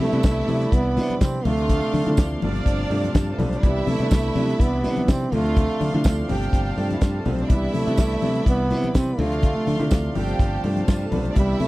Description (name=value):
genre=disco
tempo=124 BPM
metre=4/4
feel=straight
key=C major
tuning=A4 = 440 Hz
part: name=breathy trombone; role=melody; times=0.0-11.7 s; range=G3 to C4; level=-25 LUFS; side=right 2 dB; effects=none
part: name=warm symphonic violin section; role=second line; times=0.0-11.7 s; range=G3 to G5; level=-32 LUFS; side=right 2 dB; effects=none
part: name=warm concert grand piano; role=accompaniment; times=0.0-11.7 s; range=B2 to E4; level=-27 LUFS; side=equal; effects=none
part: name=clear studio string section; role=sustained chords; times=0.0-11.7 s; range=E4 to C6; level=-36 LUFS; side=equal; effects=none
part: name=modern bright fingered electric bass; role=bass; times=0.0-11.7 s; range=G1 to D3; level=-25 LUFS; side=equal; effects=none
part: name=damped 70s drum kit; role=drums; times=0.0-11.7 s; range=hi-hat, kick drum, snare drum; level=-19 LUFS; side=equal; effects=none
part: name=congas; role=percussion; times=0.0-11.7 s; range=none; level=-31 LUFS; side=left 5 dB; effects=none
part: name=tambourine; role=percussion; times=0.2-11.0 s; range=none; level=-41 LUFS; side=right 13 dB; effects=none
room=little or no reverb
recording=dry, close 1970s-style studio recording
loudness=-19 LUFS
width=side -18 dB against mid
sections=0.0-11.7 A section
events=none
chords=0.0 Cmaj9; 1.5 Dm9; 2.4 G9sus4; 3.6 Cmaj9; 5.3 Dm9; 6.3 G9sus4; 7.5 Cmaj9; 9.2 Dm9; 10.2 G9sus4